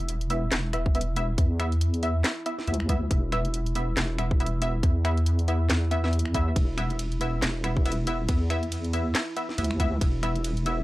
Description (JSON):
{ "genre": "deep dubstep", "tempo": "139 BPM", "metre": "4/4", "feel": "swing 58% on 16ths, half-time", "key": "unclear", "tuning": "A4 = 440 Hz", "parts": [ { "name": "dark analog pad", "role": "sustained chords", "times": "0.0-10.8 s", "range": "E4", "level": "-37 LUFS", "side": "right 3 dB", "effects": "chorus" }, { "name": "deep soft wobble bass", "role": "bass", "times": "0.0-10.8 s", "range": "E1 to E2", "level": "-26 LUFS", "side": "equal", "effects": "chorus" }, { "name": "garage drum kit", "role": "drums", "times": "0.0-10.8 s", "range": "finger snaps, handclaps, hi-hat, ride cymbal, snare drum", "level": "-31 LUFS", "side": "equal", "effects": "none" }, { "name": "filtered dub chord stab", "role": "stabs", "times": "0.3-10.8 s", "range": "B3 to E5", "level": "-32 LUFS", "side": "equal", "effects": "chorus, dub echo" }, { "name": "electronic kick drum", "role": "drums", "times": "0.9-10.1 s", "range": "none", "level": "-24 LUFS", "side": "equal", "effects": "none" } ], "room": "little or no reverb", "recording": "dry, gritty hardware recording, cassette tape", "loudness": "-24 LUFS", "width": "side -18 dB against mid", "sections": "0.0-10.8 A section", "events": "none", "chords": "0.0 E5" }